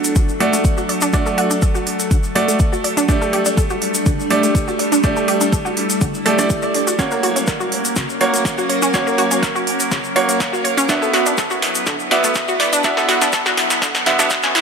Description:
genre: progressive house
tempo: 123 BPM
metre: 4/4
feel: straight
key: unclear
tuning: A4 = 440 Hz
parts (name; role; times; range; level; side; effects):
- evolving wavetable pad; sustained chords; 0.0-14.6 s; F#3 to B4; -23 LUFS; left 1 dB; phaser, built-in reverb, sidechain pumping
- bright grand piano; stabs; 0.0-14.6 s; A3 to E5; -19 LUFS; right 3 dB; sidechain pumping, tape echo
- big-room dance drum kit; drums; 0.0-14.6 s; hi-hat, snare drum; -21 LUFS; right 1 dB; overdrive, sidechain pumping on hats, high-pass filter on hats, high-pass filter on snare, high-pass filter on room
- egg shaker; percussion; 0.0-14.5 s; none; -25 LUFS; left 4 dB; none
- analog pluck; arpeggios; 0.2-14.6 s; C#3 to D5; -21 LUFS; equal; chorus, sidechain pumping, tape echo
- electronic kick drum; drums; 0.2-14.4 s; none; -18 LUFS; equal; none
room: moderate huge ambient reverb, RT60 6.2 s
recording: high-pass filter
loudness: -14 LUFS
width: side -6 dB against mid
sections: 0.0-14.6 A section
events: build-up 0.0-14.6; filter sweep on synth arpeggio sound 0.0-14.6; filter sweep 0.0-14.6; drum fill 7.0-14.6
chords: 0.0 D; 3.1 Gsus2; 7.0 F#; 10.9 Esus2

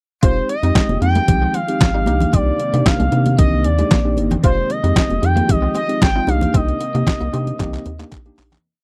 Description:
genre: early-eighties boogie funk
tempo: 114 BPM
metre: 4/4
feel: straight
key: F minor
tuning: A4 = 440 Hz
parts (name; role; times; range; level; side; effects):
- expressive synth lead; melody; 0.2-8.1 s; C5 to G5; -24 LUFS; equal; chorus
- tine electric piano; accompaniment; 0.2-8.6 s; Ab3 to G4; -26 LUFS; equal; none
- soft string machine; sustained chords; 0.9-8.6 s; C3 to G4; -29 LUFS; equal; none
- clean electric guitar; riff; 0.2-8.6 s; Ab3 to F4; -31 LUFS; equal; ensemble chorus
- rubbery square bass; bass; 0.2-8.6 s; F1 to C3; -21 LUFS; equal; none
- detuned 8-bit digital drum machine; drums; 0.2-8.6 s; handclaps, hi-hat, kick drum, snare drum; -18 LUFS; equal; none
- congas; percussion; 0.9-8.6 s; none; -28 LUFS; equal; none
room: little or no reverb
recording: dry, close 1970s-style studio recording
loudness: -17 LUFS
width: mono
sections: 0.2-8.6 verse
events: fade-out 6.5-8.6; drum fill 7.6-8.6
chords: 0.2 Fm9; 2.1 Cm9; 4.4 Fm9; 6.3 Cm9

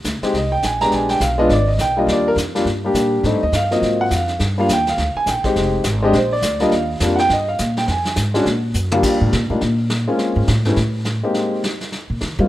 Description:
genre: jazz piano trio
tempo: 207 BPM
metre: 4/4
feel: swing 61% on 8ths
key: Eb major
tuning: A4 = 439 Hz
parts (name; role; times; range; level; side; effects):
- upright bass; bass; 0.0-12.5 s; F1 to G3; -20 LUFS; equal; none
- vintage brush drum kit; drums; 0.0-12.5 s; brushed snare drum, crash cymbal, hi-hat, kick drum, snare drum, toms; -25 LUFS; equal; none
- warm upright piano; melody; 0.2-12.5 s; Eb2 to Bb5; -17 LUFS; equal; none
room: moderate digital room reverb, RT60 1.2 s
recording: rough home demo mix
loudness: -16 LUFS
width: side -14 dB against mid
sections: 0.0-9.0 A section; 9.0-12.5 A section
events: upright piano solo 0.0-9.0; drum fill 8.7; upright bass solo 9.0-12.5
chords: 0.0 Fm9 (rootless); 0.9 Bb7b9; 2.1 Ebmaj7; 3.2 Am7b5; 3.8 Ab13; 4.4 Gm7; 5.6 Fm9; 6.1 Bb; 6.7 Ebadd9; 7.9 Fm; 8.5 N.C.; 9.0 Ebmaj9; 10.2 Bbm9; 10.8 N.C.; 11.3 Abmaj9

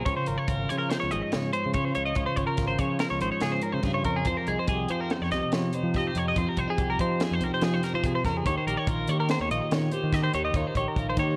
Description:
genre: math rock and midwest emo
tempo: 143 BPM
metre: 5/4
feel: straight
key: Db lydian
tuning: A4 = 435 Hz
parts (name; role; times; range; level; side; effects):
- twelve-string electric guitar; accompaniment; 0.0-11.4 s; F2 to Ab4; -33 LUFS; equal; none
- twelve-string electric guitar; arpeggios; 0.0-11.4 s; Ab4 to Eb5; -32 LUFS; equal; slapback echo
- growling fingered electric bass; bass; 0.0-11.4 s; Ab1 to F3; -33 LUFS; equal; overdrive
- crisp fusion drum kit; drums; 0.1-11.3 s; hi-hat, kick drum, snare drum; -34 LUFS; equal; none
room: light reverb, small room ambience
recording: worn, warbling old tape, cassette tape, warbly pitch drift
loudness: -27 LUFS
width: mono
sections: 0.0-11.4 A section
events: none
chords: 0.1 Dbmaj7; 4.3 Fm9; 8.5 Eb7

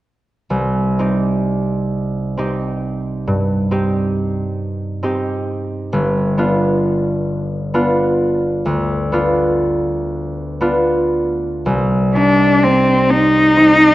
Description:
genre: classical, romantic duo for cello and harp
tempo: 36-46 BPM (dotted quarters)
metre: 12/8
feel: rubato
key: C minor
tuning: A4 = 438 Hz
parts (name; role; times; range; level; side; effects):
- concert harp; accompaniment; 0.5-13.9 s; G1 to G4; -16 LUFS; equal; none
- warm cello; melody; 12.2-13.9 s; C4 to Eb4; -10 LUFS; left 1 dB; none
room: moderate scoring stage reverb, RT60 1.7 s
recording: worn, warbling old tape, cassette tape, warbly pitch drift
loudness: -14 LUFS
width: side -16 dB against mid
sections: 0.5-11.7 A section; 11.7-13.9 B section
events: none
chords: 0.5 Cm; 5.9 G7; 11.7 Cm

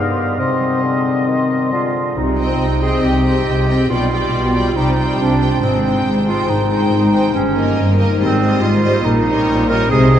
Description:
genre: classical, dramatic, fast romantic movement for symphony orchestra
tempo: 139 BPM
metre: 4/4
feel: straight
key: C minor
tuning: A4 = 438 Hz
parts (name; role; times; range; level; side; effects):
- clear clarinet; second line; 0.0-10.2 s; B3 to Bb4; -18 LUFS; right 2 dB; none
- clear oboe; second line; 0.0-1.9 s; Eb5 to F5; -27 LUFS; left 2 dB; none
- small flute group; second line; 0.0-1.9 s; C6; -28 LUFS; equal; none
- mellow bassoon; accompaniment; 0.0-2.2 s; G2 to Eb3; -26 LUFS; left 2 dB; none
- concert harp; arpeggios; 0.0-10.2 s; G2 to Eb5; -22 LUFS; left 3 dB; none
- dark symphonic double bass section; bass; 2.2-10.2 s; G1 to C2; -21 LUFS; equal; none
- warm symphonic cello section; bass; 2.2-10.2 s; G2 to C3; -20 LUFS; equal; none
- rich studio violin section; melody; 2.4-10.2 s; Eb5 to G5; -26 LUFS; equal; none
- rich symphonic violin section; second line; 2.4-10.2 s; Bb4 to Eb5; -24 LUFS; left 1 dB; none
- clear symphonic viola section; accompaniment; 2.4-10.2 s; G3 to C4; -23 LUFS; left 2 dB; none
room: wet huge ambient reverb, RT60 7.6 s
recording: in a vast, echoing space, nothing above 10.8 kHz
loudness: -13 LUFS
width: side -10 dB against mid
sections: 0.0-2.2 A section; 2.2-10.2 B section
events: none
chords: 0.4 Cm; 3.9 G7/B; 4.8 Cm; 5.6 Abmaj7; 7.3 Eb7/G; 8.2 Abmaj7; 9.1 Eb7/Bb

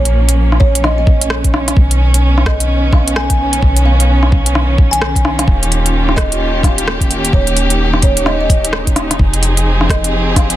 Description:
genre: future garage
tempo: 129 BPM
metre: 4/4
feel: swing 61% on 16ths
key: unclear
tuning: A4 = 441 Hz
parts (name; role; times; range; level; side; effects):
- kalimba; melody; 0.0-10.6 s; Db5 to Ab5; -21 LUFS; equal; analog delay
- dark chamber string section; sustained chords; 0.0-10.6 s; D#3 to Ab4; -18 LUFS; right 1 dB; sidechain pumping
- soft 808-style bass; bass; 0.0-10.6 s; Eb1 to B1; -15 LUFS; equal; sidechain pumping
- organic electronic drum kit; drums; 0.1-10.6 s; hi-hat, rim click; -17 LUFS; equal; soft clipping on snare
- electronic kick drum; drums; 0.6-10.5 s; none; -12 LUFS; equal; none
room: little or no reverb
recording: dense, heavily limited modern master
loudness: -10 LUFS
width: side -14 dB against mid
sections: 0.0-10.6 A section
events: none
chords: 0.0 Bbm; 1.8 Badd9; 5.5 Eb7; 9.2 Fm7

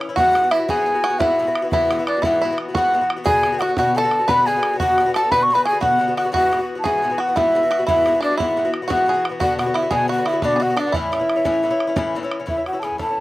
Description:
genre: celtic folk, Celtic slip jig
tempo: 117 BPM (dotted quarters)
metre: 9/8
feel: straight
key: unclear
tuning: A4 = 440 Hz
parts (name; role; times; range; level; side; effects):
- Irish bouzouki; accompaniment; 0.0-13.2 s; G#2 to F#4; -25 LUFS; left 3 dB; slapback echo
- bodhran; percussion; 0.0-13.2 s; none; -27 LUFS; right 2 dB; none
- baroque flute; melody; 0.2-13.2 s; D5 to C#6; -18 LUFS; equal; none
- bluegrass banjo; second line; 0.2-12.3 s; D4 to B4; -26 LUFS; right 4 dB; none
- breathy bright large pan pipes; second line; 0.2-13.2 s; D4 to B4; -27 LUFS; left 2 dB; none
room: little or no reverb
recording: recorded outdoors, with no room sound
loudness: -16 LUFS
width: side -17 dB against mid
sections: 0.2-12.5 A section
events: none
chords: 0.2 Eadd9; 3.3 Bm; 6.3 Eadd9; 9.4 Bm; 10.9 A

